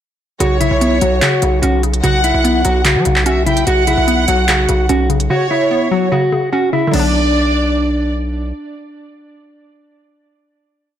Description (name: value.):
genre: hip hop, trap.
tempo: 147 BPM.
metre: 4/4.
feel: half-time.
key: B minor.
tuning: A4 = 441 Hz.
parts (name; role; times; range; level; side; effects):
mellow electric guitar; melody; 0.4-8.1 s; D4 to F#4; -17 LUFS; equal; tape echo.
warm studio violin section; second line; 0.4-8.1 s; C#5 to G5; -19 LUFS; right 1 dB; tape echo.
hollow square pluck; accompaniment; 0.4-11.0 s; C#3 to D4; -19 LUFS; left 1 dB; chorus.
distorted 808-style bass; bass; 0.4-8.5 s; B1 to F#3; -17 LUFS; equal; distortion.
trap drum kit; drums; 0.4-7.0 s; crash cymbal, handclaps, hi-hat; -19 LUFS; equal; none.
room: light reverb, digital ambience.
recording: blown-out, overdriven recording, overdrive.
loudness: -12 LUFS.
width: side -10 dB against mid.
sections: 0.4-6.9 hook; 6.9-10.2 final chord.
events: drums muted 5.3-6.9.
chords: 0.4 Bsus2; 6.9 Bm.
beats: | 0.40 0.81 1.22 1.63 | 2.04 2.44 2.85 3.26 | 3.67 4.08 4.49 4.89 | 5.30 5.71 6.12 6.53 | 6.93 7.34 7.75 8.16 | 8.57 8.98 9.38 9.79.